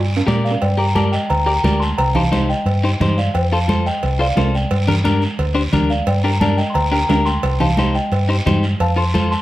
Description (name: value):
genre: latin, cumbia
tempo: 176 BPM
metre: 4/4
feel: straight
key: G minor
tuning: A4 = 438 Hz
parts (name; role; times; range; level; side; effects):
- hollow-body short-scale fingered electric bass; bass; 0.0-9.3 s; C2 to Bb2; -18 LUFS; equal; none
- timbales and cowbell; percussion; 0.2-9.0 s; none; -26 LUFS; right 4 dB; none
- clean electric guitar; accompaniment; 0.3-9.3 s; D4 to D5; -22 LUFS; left 3 dB; none
- congas; percussion; 0.3-9.3 s; none; -21 LUFS; right 2 dB; none
- guiro; percussion; 0.3-9.4 s; none; -29 LUFS; right 2 dB; none
- celesta; melody; 0.4-9.4 s; C5 to C6; -21 LUFS; equal; plate reverb
room: moderate large studio reverb, RT60 0.9 s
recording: dark, warm production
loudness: -15 LUFS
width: side -15 dB against mid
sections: 0.6-9.4 A section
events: drum fill 0.0-0.6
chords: 0.0 Gm; 2.0 Cm; 3.3 F; 4.7 Gm; 7.4 Cm; 8.8 F